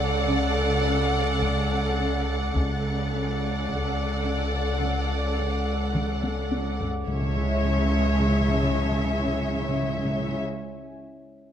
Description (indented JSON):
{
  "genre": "cinematic, suspense film score",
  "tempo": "53 BPM",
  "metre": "4/4",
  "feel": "straight",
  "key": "C# phrygian",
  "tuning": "A4 = 437 Hz",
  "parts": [
    { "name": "warm symphonic violin section", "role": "melody", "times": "0.0-10.4 s", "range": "E5 to F#5", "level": "-32 LUFS", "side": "left 2 dB", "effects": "none" },
    { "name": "warm studio violin section", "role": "second line", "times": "0.0-10.4 s", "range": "C#5 to D5", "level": "-33 LUFS", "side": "left 2 dB", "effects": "none" },
    { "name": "warm symphonic viola section", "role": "accompaniment", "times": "0.0-10.4 s", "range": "G#3 to A4", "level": "-31 LUFS", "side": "right 3 dB", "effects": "none" },
    { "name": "glass harmonica", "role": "sustained chords", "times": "0.0-10.4 s", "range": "E4 to D6", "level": "-35 LUFS", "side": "left 2 dB", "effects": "none" },
    { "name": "rich symphonic cello section", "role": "riff", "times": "0.0-6.9 s", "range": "C#3 to C#4", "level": "-35 LUFS", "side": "right 1 dB", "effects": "none" },
    { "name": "rich symphonic double bass section", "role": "bass", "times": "0.0-10.4 s", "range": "C#2", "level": "-32 LUFS", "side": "right 2 dB", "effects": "none" },
    { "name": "warm symphonic cello section", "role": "bass", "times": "0.0-10.4 s", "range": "C#3", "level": "-32 LUFS", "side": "right 2 dB", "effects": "none" },
    { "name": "saturated sub bass", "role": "drone", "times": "0.0-10.4 s", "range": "C#2", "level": "-29 LUFS", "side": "left 1 dB", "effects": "none" },
    { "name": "warm symphonic violin section", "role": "texture", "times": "0.0-11.0 s", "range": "G#5 to C#7", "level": "-39 LUFS", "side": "left 2 dB", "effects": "none" },
    { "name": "taiko ensemble", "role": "drums", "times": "1.4-7.3 s", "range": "none", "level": "-32 LUFS", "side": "left 1 dB", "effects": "none" },
    { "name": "timpani", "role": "percussion", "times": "7.1-10.4 s", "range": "C#3", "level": "-31 LUFS", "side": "left 1 dB", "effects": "none" }
  ],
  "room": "light reverb",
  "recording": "close, detailed microphones",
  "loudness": "-23 LUFS",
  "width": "side -9 dB against mid",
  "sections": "0.0-7.1 A section; 7.1-11.5 B section",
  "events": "drum fill 5.9-7.1",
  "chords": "0.0 D/C#; 7.1 C#m",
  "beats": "0.28 1.41 | 2.55 3.68 4.81 5.94 | 7.08 8.21 9.34 10.47"
}